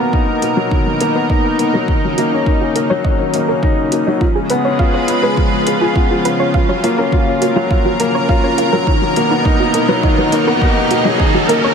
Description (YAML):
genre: piano and strings electronica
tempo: 103 BPM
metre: 4/4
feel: straight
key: unclear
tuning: A4 = 440 Hz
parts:
  - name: lush unison pad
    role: sustained chords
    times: 0.0-11.7 s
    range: B2 to B4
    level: -19 LUFS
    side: right 1 dB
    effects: chorus
  - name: soft round pluck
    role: arpeggios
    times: 0.0-11.7 s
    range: D#4 to E#5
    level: -21 LUFS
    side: right 4 dB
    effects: chorus, sidechain pumping, ping-pong delay
  - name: dark upright piano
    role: riff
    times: 0.0-11.7 s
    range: D#3 to G#4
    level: -16 LUFS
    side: left 3 dB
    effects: ping-pong delay
  - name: dark detuned saw bass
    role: bass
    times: 0.0-11.7 s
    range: none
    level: barely audible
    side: none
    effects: none
  - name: electronic kick drum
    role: drums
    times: 0.1-11.3 s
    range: none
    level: -16 LUFS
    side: right 1 dB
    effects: none
  - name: electronic hi-hat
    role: drums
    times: 0.4-11.6 s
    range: none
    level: -24 LUFS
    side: right 1 dB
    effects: none
  - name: riser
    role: sound effects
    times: 7.8-11.7 s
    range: none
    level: -22 LUFS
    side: right 2 dB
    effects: none
room: light reverb, digital ambience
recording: none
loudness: -12 LUFS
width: side -6 dB against mid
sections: 0.0-11.7 A section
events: build-up 0.0-11.7; filter sweep on synth arpeggio sound 0.0-11.7; riser 7.8-11.7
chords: 0.0 Bmaj7; 1.9 D#m7; 4.2 C#7; 6.5 F#maj7; 8.9 Bmaj7; 11.2 D#m7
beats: 0.14 0.72 1.30 | 1.89 2.47 3.05 3.63 | 4.21 4.80 5.38 5.96 | 6.54 7.13 7.71 8.29 | 8.88 9.46 10.04 10.62 | 11.21